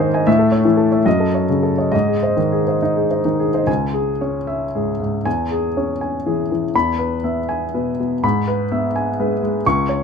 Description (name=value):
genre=classical, romantic character piece for solo piano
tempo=65-88 BPM (dotted quarters)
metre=6/8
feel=rubato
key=C# minor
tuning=A4 = 440 Hz
part: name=warm grand piano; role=solo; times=0.0-10.0 s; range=C#2 to C#6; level=-16 LUFS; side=left 1 dB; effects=none
room=light reverb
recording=none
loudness=-16 LUFS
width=side -6 dB against mid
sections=0.0-3.7 A section; 3.7-10.0 A section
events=none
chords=0.3 A; 1.1 D#m7b5/F#; 1.9 G#; 3.7 C#m; 5.3 C#m/E; 6.7 E; 8.2 E/G#